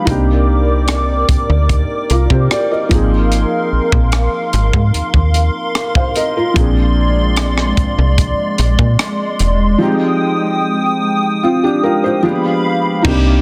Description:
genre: contemporary R&B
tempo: 74 BPM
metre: 4/4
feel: straight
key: C minor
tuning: A4 = 440 Hz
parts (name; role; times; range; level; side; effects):
- felt-muted upright piano; accompaniment; 0.0-13.4 s; F3 to F5; -20 LUFS; equal; none
- hollow soft pad; sustained chords; 0.0-13.4 s; Ab3 to Eb6; -21 LUFS; equal; ensemble chorus, sidechain pumping
- slap-like FM bass; bass; 0.1-13.4 s; E1 to C3; -16 LUFS; equal; none
- tight funk drum kit; drums; 0.1-13.2 s; crash cymbal, hi-hat, kick drum, rim click; -19 LUFS; equal; soft clipping on snare
room: small room ambience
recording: dense, heavily limited modern master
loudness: -14 LUFS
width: mono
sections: 0.1-13.0 A section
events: drums muted 9.8-13.0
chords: 0.1 Cm9; 2.9 Ab69; 6.6 Bb9; 9.8 Fm9; 12.2 G7b9

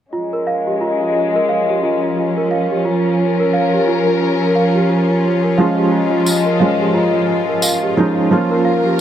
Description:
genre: trip hop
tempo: 88 BPM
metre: 4/4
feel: swing 60% on 16ths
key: unclear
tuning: A4 = 440 Hz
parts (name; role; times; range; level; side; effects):
- dark chamber string section; sustained chords; 0.1-9.0 s; F3 to Bb4; -17 LUFS; left 2 dB; low-pass filter
- worn celesta; arpeggios; 0.1-9.0 s; F4 to F5; -19 LUFS; right 3 dB; low-pass filter, tape echo
- bowed-like drone; texture; 0.9-9.0 s; F3 to F4; -25 LUFS; left 1 dB; built-in reverb
- felt-muted upright piano; accompaniment; 5.6-9.0 s; F3 to F4; -16 LUFS; right 2 dB; tremolo, vintage 12-bit sampler grit, tape echo
- tambourine; percussion; 6.3-7.8 s; none; -19 LUFS; equal; none
room: light reverb, small room ambience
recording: none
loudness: -13 LUFS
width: side -10 dB against mid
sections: 0.1-9.0 A section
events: none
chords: 0.1 Db; 2.9 Bbm; 5.6 Db; 8.3 Bbm

